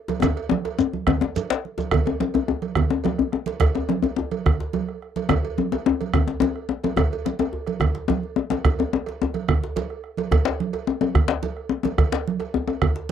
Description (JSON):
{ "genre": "west african traditional, West African drum ensemble", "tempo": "143 BPM (dotted quarters)", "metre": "12/8", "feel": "straight", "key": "none", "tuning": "none", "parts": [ { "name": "bombo", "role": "percussion", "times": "0.1-12.9 s", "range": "none", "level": "-24 LUFS", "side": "right 2 dB", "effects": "none" }, { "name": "congas", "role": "percussion", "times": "0.1-13.1 s", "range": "none", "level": "-27 LUFS", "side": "right 8 dB", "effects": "none" }, { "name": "cowbell", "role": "percussion", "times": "0.1-13.1 s", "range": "none", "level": "-31 LUFS", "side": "right 9 dB", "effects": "none" }, { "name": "djembe", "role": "percussion", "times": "0.1-13.1 s", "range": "none", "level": "-27 LUFS", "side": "equal", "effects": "none" }, { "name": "djembe", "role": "percussion", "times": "0.2-12.8 s", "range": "none", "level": "-22 LUFS", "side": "left 9 dB", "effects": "none" }, { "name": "shekere", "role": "percussion", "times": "0.2-1.9 s", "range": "none", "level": "-31 LUFS", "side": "right 3 dB", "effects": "none" } ], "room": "light reverb", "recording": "dry, close 1970s-style studio recording", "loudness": "-21 LUFS", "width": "side -9 dB against mid", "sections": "0.0-1.9 A section; 1.9-13.1 B section", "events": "drum fill 0.2-1.9", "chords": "none", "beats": "| 0.23 0.65 1.08 1.50 | 1.92 2.35 2.77 3.19 | 3.61 4.03 4.45 4.88 | 5.29 5.72 6.14 6.56 | 6.97 7.39 7.81 8.23 | 8.65 9.07 9.49 9.90 | 10.32 10.74 11.16 11.57 | 11.99 12.40 12.82" }